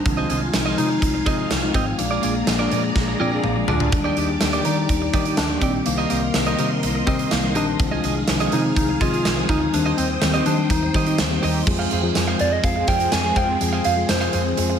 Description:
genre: 1980s-style pop.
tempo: 124 BPM.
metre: 4/4.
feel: straight.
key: F dorian.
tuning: A4 = 440 Hz.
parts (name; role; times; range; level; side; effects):
soft struck synth lead; melody; 0.0-14.8 s; Bb3 to Ab5; -24 LUFS; left 2 dB; chorus, tape echo.
mellow FM electric piano; accompaniment; 0.0-14.8 s; Eb3 to D5; -25 LUFS; left 3 dB; chorus.
string machine, full ensemble; sustained chords; 0.0-14.8 s; F3 to Eb6; -28 LUFS; equal; ensemble chorus.
clean electric guitar; riff; 0.1-14.7 s; Eb4 to F5; -28 LUFS; right 5 dB; wide subtle chorus, tape echo.
woody fretless electric bass; bass; 0.1-14.7 s; Ab1 to Eb3; -26 LUFS; equal; lush chorus.
big rock drum kit; drums; 0.1-14.7 s; crash cymbal, hi-hat, kick drum, snare drum, tambourine, toms; -23 LUFS; right 1 dB; gated reverb.
mellow synth brass; stabs; 2.6-3.9, 10.3-14.8 s; Ab3 to Ab4; -32 LUFS; right 3 dB; none.
room: light reverb, small room ambience.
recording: none.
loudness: -18 LUFS.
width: side -8 dB against mid.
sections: 0.0-11.7 A section; 11.7-14.8 B section.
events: band accent 2.0-3.9, 9.7-11.7; drum fill 3.0-3.9.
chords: 0.1 Fm7/C; 2.0 Bb7; 3.9 Ebmaj7; 5.9 Cm7; 7.8 Fm7/C; 9.7 Eb6; 11.7 Fm.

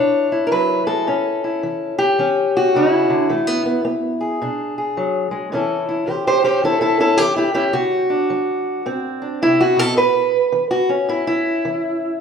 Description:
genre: acoustic country blues, solo or duo.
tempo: 108 BPM.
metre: 4/4.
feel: swing 64% on 8ths.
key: A mixolydian.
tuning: A4 = 440 Hz.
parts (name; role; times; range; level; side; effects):
fingerpicked steel-string acoustic guitar; solo; 0.0-12.2 s; A2 to C#5; -16 LUFS; equal; none.
room: wet recital hall reverb, RT60 1.5 s.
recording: recorded in a church or concert hall.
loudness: -16 LUFS.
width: side -6 dB against mid.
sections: 0.0-5.5 A section; 5.5-12.2 B section.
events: steel-string acoustic guitar solo 5.5-12.2.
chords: 0.0 E7; 1.1 A7; 3.3 E7; 5.5 A7; 7.8 D7; 10.0 A.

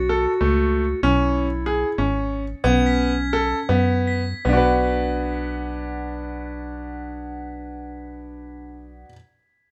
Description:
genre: contemporary instrumental, chamber music in an uneven meter.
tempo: 152-192 BPM (eighths).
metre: 5/8.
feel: straight.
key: B dorian.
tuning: A4 = 441 Hz.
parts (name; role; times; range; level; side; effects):
dark clarinet; second line; 0.0-9.0 s; C#4 to F#4; -30 LUFS; equal; none.
metallic FM bass; bass; 0.0-9.1 s; G#1 to F#2; -28 LUFS; equal; none.
crotales; texture; 0.0-9.1 s; G#6 to B6; -37 LUFS; equal; none.
bright grand piano; arpeggios; 0.1-9.2 s; A3 to B4; -25 LUFS; equal; none.
room: moderate studio reverb, RT60 0.8 s.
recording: none.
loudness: -21 LUFS.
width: mono.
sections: 0.0-4.4 A section; 4.4-8.4 B section.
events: slowing down 1.0-4.4.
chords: 0.0 F#m/B; 1.0 C#m/B; 2.6 Bsus2; 4.4 Bm.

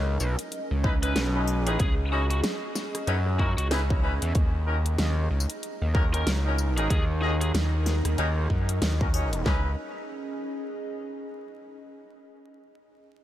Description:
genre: glitch hop.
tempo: 94 BPM.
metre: 4/4.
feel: swing 59% on 16ths.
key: C# dorian.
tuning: A4 = 440 Hz.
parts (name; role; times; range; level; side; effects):
gritty driven synth bass; bass; 0.0-9.8 s; B1 to F#2; -25 LUFS; equal; none.
warbly tape-like pad; texture; 0.0-12.0 s; C#4 to D#5; -35 LUFS; right 1 dB; chorus, built-in reverb, phaser, sidechain pumping.
dubstep drum kit; drums; 0.2-9.4 s; hi-hat, rim click, snare drum, tambourine; -33 LUFS; equal; none.
warm horn section; stabs; 0.8-9.7 s; C#4 to D#5; -34 LUFS; left 1 dB; sidechain pumping, analog delay.
dubstep drum kit; drums; 0.8-9.6 s; handclaps, kick drum, snare drum; -25 LUFS; equal; none.
biting lead guitar; melody; 1.0-7.5 s; F#4 to B4; -36 LUFS; equal; overdrive, analog delay.
room: light reverb, digital ambience.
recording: vinyl crackle.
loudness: -24 LUFS.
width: side -13 dB against mid.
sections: 0.0-9.5 A section; 9.5-12.0 B section.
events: drop 0.0-9.5.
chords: 0.0 C#m9; 4.4 D#m7; 9.5 C#sus2.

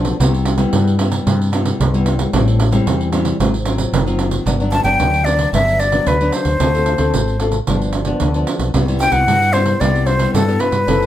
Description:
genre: samba and choro.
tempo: 112 BPM.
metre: 4/4.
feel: straight.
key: unclear.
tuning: A4 = 441 Hz.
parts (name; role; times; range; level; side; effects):
nylon-string guitar; accompaniment; 0.0-11.1 s; G2 to A4; -19 LUFS; left 2 dB; none.
mellow fretless electric bass; bass; 0.0-11.1 s; F#1 to G2; -18 LUFS; equal; none.
pandeiro; percussion; 0.0-11.1 s; none; -21 LUFS; right 5 dB; none.
breathy jazz flute; melody; 4.7-11.1 s; A4 to A5; -16 LUFS; left 2 dB; slapback echo.
room: moderate studio ambience, RT60 0.5 s.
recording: none.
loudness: -14 LUFS.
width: side -12 dB against mid.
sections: 0.0-4.5 A section; 4.5-11.1 B section.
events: none.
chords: 0.2 Cmaj7; 2.3 Am7; 3.4 Ab6; 4.5 Gmaj7; 6.6 Dm7; 7.7 G7; 8.7 Cmaj7.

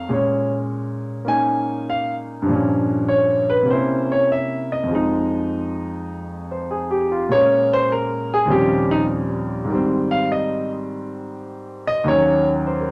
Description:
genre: solo jazz.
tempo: 101 BPM.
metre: 4/4.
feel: swing 68% on 8ths, rubato.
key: Ab major.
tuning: A4 = 439 Hz.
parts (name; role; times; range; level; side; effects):
clear concert grand piano; solo; 0.0-12.9 s; Eb2 to Ab5; -20 LUFS; equal; none.
room: wet club reverb, RT60 0.7 s.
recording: none.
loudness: -20 LUFS.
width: mono.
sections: 0.0-12.9 A section.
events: grand piano solo 0.0-12.9.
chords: 0.1 Bbm7; 2.5 Gm7b5; 3.7 C7b9; 4.9 Fm7; 7.3 Bbm7; 8.5 Eb13; 9.7 Abmaj7; 12.1 Ebm7.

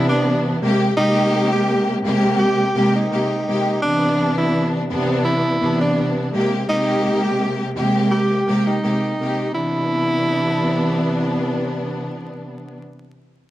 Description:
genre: hip hop.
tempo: 84 BPM.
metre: 4/4.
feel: swing 54% on 16ths.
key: unclear.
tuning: A4 = 440 Hz.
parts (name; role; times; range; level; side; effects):
breathy tenor saxophone; melody; 0.0-11.6 s; D4 to G4; -22 LUFS; right 1 dB; digital delay.
clear studio string section; accompaniment; 0.0-12.8 s; C3 to G4; -18 LUFS; equal; none.
room: light reverb, small room ambience.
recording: dark, warm production, vinyl crackle.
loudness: -17 LUFS.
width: side -14 dB against mid.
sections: 0.0-3.8 A section; 3.8-9.5 B section; 9.5-12.4 C section.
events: none.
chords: 0.0 Cmaj9; 0.6 Abmaj9; 3.8 Cmaj9; 6.3 Abmaj9; 9.5 Cmaj9.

